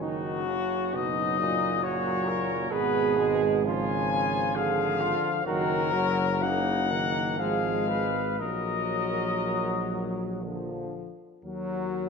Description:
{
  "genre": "classical, hymn-like piece for brass band",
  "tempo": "57-69 BPM",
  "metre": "3/4",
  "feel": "rubato",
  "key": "Eb minor",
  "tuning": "A4 = 440 Hz",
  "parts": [
    { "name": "dark cornet", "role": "melody", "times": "0.0-12.1 s", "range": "Gb4 to Ab5", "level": "-29 LUFS", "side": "left 8 dB", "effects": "none" },
    { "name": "mellow flugelhorn", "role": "second line", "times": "0.0-12.1 s", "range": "Db4 to Cb5", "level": "-31 LUFS", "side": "right 8 dB", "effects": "none" },
    { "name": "bright trombone section", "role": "accompaniment", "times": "0.0-12.1 s", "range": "F3 to Cb4", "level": "-34 LUFS", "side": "left 2 dB", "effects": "none" },
    { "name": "warm euphonium", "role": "accompaniment", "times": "0.0-12.1 s", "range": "Bb2 to Gb3", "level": "-34 LUFS", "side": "right 3 dB", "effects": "none" },
    { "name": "mellow tuba", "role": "bass", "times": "0.0-12.1 s", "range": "F#1 to Eb2", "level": "-33 LUFS", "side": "right 1 dB", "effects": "none" }
  ],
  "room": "wet scoring stage reverb, RT60 1.5 s",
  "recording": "minimal, uncompressed stereo recording",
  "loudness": "-25 LUFS",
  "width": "side -5 dB against mid",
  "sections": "0.0-11.4 A section",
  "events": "none",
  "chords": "0.0 Ebm/Gb; 2.7 Fdim/Ab; 4.6 Ddim/Ab; 5.5 Ebm/Gb; 7.4 Fdim/Ab; 8.4 Ebm/Bb; 10.4 Bb; 11.4 Ebm",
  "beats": "| 0.02 0.94 1.83 | 2.71 3.66 4.55 | 5.45 6.42 7.39 | 8.40 9.42 10.44 | 11.44"
}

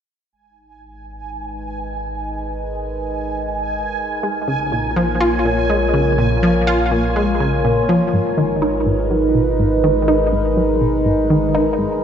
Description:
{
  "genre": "ambient, sequencer-driven space music",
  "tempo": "123 BPM",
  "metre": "4/4",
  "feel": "straight",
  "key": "G# dorian",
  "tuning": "A4 = 441 Hz",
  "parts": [
    { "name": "sweeping resonant pad", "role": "sustained chords", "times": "1.5-12.0 s", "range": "G#3 to C#5", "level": "-19 LUFS", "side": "equal", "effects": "chorus, phaser" },
    { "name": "warm sub bass", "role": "bass", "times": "0.3-12.0 s", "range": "G#1 to A#1", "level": "-24 LUFS", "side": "equal", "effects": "none" },
    { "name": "bubbling stepped-filter texture", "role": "texture", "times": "0.3-8.1 s", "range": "G#5", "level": "-25 LUFS", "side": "right 2 dB", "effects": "chorus, built-in reverb" },
    { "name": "analog pluck", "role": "riff", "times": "4.2-12.0 s", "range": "G#2 to E#4", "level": "-18 LUFS", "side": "equal", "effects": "chorus, analog delay" }
  ],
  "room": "wet echo chamber reverb, RT60 2.4 s",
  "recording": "echo-heavy mix, nothing above 8.0 kHz",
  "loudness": "-15 LUFS",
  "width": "side -8 dB against mid",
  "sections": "0.3-8.1 A section; 8.1-12.0 B section",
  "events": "fade-in on analog synth pad 0.3-8.1; fade-in on sub bass 0.3-8.1",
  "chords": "0.3 G#m; 4.2 A#m7; 8.1 G#m7",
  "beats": "| 0.33 0.81 1.30 1.79 | 2.28 2.77 3.25 3.74 | 4.23 4.72 5.20 5.69 | 6.18 6.67 7.16 7.64 | 8.13 8.62 9.11 9.60 | 10.08 10.57 11.06 11.55 | 12.03"
}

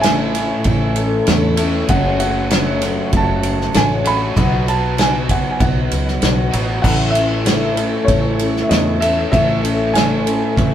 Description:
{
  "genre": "folk rock and heartland rock",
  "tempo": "97 BPM",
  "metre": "4/4",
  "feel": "straight",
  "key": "unclear",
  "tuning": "A4 = 443 Hz",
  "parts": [
    { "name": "dark grand piano", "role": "melody", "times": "0.0-10.7 s", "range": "C#5 to B5", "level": "-21 LUFS", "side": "right 1 dB", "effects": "none" },
    { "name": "picked steel-string acoustic guitar", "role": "accompaniment", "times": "0.0-10.7 s", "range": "F#2 to A4", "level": "-22 LUFS", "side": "left 4 dB", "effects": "none" },
    { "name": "bright tonewheel organ", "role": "sustained chords", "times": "0.0-10.7 s", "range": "A3 to C#6", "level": "-30 LUFS", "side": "equal", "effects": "none" },
    { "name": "crunchy overdriven guitar", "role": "riff", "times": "0.0-10.7 s", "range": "F#2 to A4", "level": "-22 LUFS", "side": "right 1 dB", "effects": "none" },
    { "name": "fingered electric bass", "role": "bass", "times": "0.0-10.7 s", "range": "F#1 to E2", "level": "-21 LUFS", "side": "equal", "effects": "none" },
    { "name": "natural country drum kit", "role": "drums", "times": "0.0-10.7 s", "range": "crash cymbal, kick drum, ride cymbal, snare drum", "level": "-19 LUFS", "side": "right 1 dB", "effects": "none" }
  ],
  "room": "moderate stone room reverb, RT60 1.4 s",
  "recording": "band playing live in one room",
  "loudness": "-14 LUFS",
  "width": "side -10 dB against mid",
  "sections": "0.0-10.7 A section",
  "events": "none",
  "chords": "0.0 A; 1.9 F#madd9; 4.4 B; 6.8 A",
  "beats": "0.04 0.66 1.28 | 1.90 2.52 3.13 3.75 | 4.37 4.99 5.60 6.22 | 6.84 7.46 8.08 8.70 | 9.31 9.93 10.55"
}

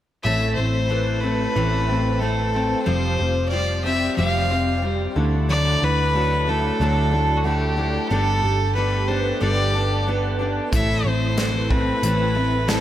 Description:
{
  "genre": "folk rock and heartland rock",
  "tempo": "92 BPM",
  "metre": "4/4",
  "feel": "straight",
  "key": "A minor",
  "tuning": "A4 = 439 Hz",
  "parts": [
    { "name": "rich fiddle", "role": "melody", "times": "0.2-12.8 s", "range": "F#4 to F5", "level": "-24 LUFS", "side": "equal", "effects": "tape echo" },
    { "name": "picked steel-string acoustic guitar", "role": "accompaniment", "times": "0.2-12.8 s", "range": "A2 to C5", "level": "-26 LUFS", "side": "left 2 dB", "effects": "none" },
    { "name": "electric guitar through a small old amp", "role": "riff", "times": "0.2-12.8 s", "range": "A2 to E4", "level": "-28 LUFS", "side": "right 2 dB", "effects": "analog chorus, slapback echo" },
    { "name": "hollow-body short-scale picked electric bass", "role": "bass", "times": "0.2-12.8 s", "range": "F1 to D2", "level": "-23 LUFS", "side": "equal", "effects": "none" },
    { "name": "dark studio string section", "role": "sustained chords", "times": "0.3-12.8 s", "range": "A3 to F#5", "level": "-34 LUFS", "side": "right 1 dB", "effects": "none" },
    { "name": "natural country drum kit", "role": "drums", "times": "10.7-12.8 s", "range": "hi-hat, kick drum, snare drum", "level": "-23 LUFS", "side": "equal", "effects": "none" }
  ],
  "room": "moderate concert hall reverb, RT60 2.1 s",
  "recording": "big arena sound",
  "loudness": "-18 LUFS",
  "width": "side -12 dB against mid",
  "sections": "0.2-12.8 A section",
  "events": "none",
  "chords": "0.2 Am; 2.9 Fsus2; 5.2 Dadd9; 8.1 Gadd9; 10.7 Am",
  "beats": "| 0.25 0.91 1.56 2.22 | 2.87 3.53 4.18 4.84 | 5.50 6.15 6.80 7.46 | 8.11 8.77 9.42 10.07 | 10.73 11.38 12.03 12.68"
}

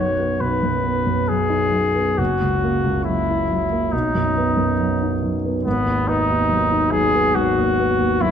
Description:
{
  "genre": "classical, romantic duo for trumpet and grand piano",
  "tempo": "69 BPM",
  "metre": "4/4",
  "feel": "rubato",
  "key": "B major",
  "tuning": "A4 = 440 Hz",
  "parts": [
    { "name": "warm trumpet", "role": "melody", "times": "0.0-8.3 s", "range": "B3 to C#5", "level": "-20 LUFS", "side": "left 2 dB", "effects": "none" },
    { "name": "warm concert grand piano", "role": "accompaniment", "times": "0.0-8.3 s", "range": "F#1 to E4", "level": "-20 LUFS", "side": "right 1 dB", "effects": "none" }
  ],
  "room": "wet recital hall reverb, RT60 1.5 s",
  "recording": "dark, warm production",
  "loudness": "-17 LUFS",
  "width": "side -8 dB against mid",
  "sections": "0.0-8.3 A section",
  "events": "none",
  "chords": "0.0 B; 2.2 F#7; 3.9 B; 5.7 G#m7",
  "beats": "0.43 1.31 | 2.19 3.07 3.93 4.79 | 5.65 6.50 7.35 8.22"
}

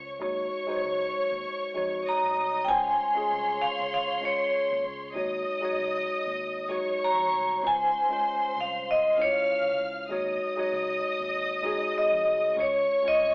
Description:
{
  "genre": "lush 1970s-style soul",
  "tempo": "97 BPM",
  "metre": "4/4",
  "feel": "swing 54% on 16ths",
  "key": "Db major",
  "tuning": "A4 = 440 Hz",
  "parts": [
    { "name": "rich studio string section", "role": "second line", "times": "0.0-13.3 s", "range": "C5 to F6", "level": "-32 LUFS", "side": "equal", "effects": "none" },
    { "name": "tine electric piano", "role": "accompaniment", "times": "0.0-13.3 s", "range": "Ab3 to Db5", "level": "-31 LUFS", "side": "equal", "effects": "medium stereo tremolo" },
    { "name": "vintage muted fingered electric bass", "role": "bass", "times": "0.0-13.3 s", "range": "C2 to Gb2", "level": "-49 LUFS", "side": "equal", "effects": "none" },
    { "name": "vibraphone with hard mallets", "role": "melody", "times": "2.1-13.3 s", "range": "Db5 to Bb5", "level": "-24 LUFS", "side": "equal", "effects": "none" }
  ],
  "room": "moderate large studio reverb, RT60 1.2 s",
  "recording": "band playing live in one room, telephone sound",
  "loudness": "-24 LUFS",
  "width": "side -27 dB against mid",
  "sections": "0.0-13.3 A section",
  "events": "none",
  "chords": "0.2 Ab7sus4; 2.7 Dbmaj7; 5.2 Ab7sus4; 7.6 Dbmaj7; 10.1 Ab7sus4; 12.6 Dbmaj7",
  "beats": "| 0.21 0.83 1.45 2.07 | 2.69 3.31 3.92 4.54 | 5.16 5.78 6.40 7.01 | 7.63 8.25 8.87 9.48 | 10.10 10.72 11.34 11.95 | 12.57 13.19"
}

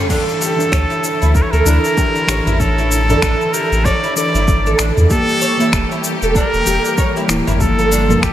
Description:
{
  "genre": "organic downtempo",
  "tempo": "96 BPM",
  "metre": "4/4",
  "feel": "swing 59% on 16ths",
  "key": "D harmonic minor",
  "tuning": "A4 = 440 Hz",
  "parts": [
    { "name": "clear studio string section", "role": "sustained chords", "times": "0.0-8.3 s", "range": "D3 to G4", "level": "-25 LUFS", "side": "equal", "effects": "sidechain pumping" },
    { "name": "oud", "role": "arpeggios", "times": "0.0-8.3 s", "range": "D4 to C#5", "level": "-20 LUFS", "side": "right 2 dB", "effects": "diffuse ambient delay" },
    { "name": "trumpet with straight mute", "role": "melody", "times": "0.1-8.3 s", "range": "G4 to D5", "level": "-19 LUFS", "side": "equal", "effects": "analog delay" },
    { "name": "muted felt-like synth keys", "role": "accompaniment", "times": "0.1-8.2 s", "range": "E3 to D5", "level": "-21 LUFS", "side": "left 1 dB", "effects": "chorus, sidechain pumping, diffuse ambient delay" },
    { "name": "deep house drum kit", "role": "drums", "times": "0.1-8.3 s", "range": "crash cymbal, finger snaps, shaker, toms", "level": "-22 LUFS", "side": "left 1 dB", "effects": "overdrive" },
    { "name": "electronic kick drum", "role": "drums", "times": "0.1-8.3 s", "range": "none", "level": "-18 LUFS", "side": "equal", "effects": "overdrive" },
    { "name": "warm sub bass", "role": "bass", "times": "0.7-8.3 s", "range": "D1 to E2", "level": "-16 LUFS", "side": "equal", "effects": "none" }
  ],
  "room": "moderate cathedral reverb, RT60 5.3 s",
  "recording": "dreamy mix soaked in reverb",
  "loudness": "-12 LUFS",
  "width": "side -12 dB against mid",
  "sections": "0.1-8.3 A section",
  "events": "none",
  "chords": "0.1 Dsus2; 2.6 Asus4; 5.1 Edim; 7.6 Gm7",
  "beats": "| 0.10 0.72 1.35 1.98 | 2.60 3.23 3.85 4.47 | 5.10 5.72 6.35 6.97 | 7.60 8.22"
}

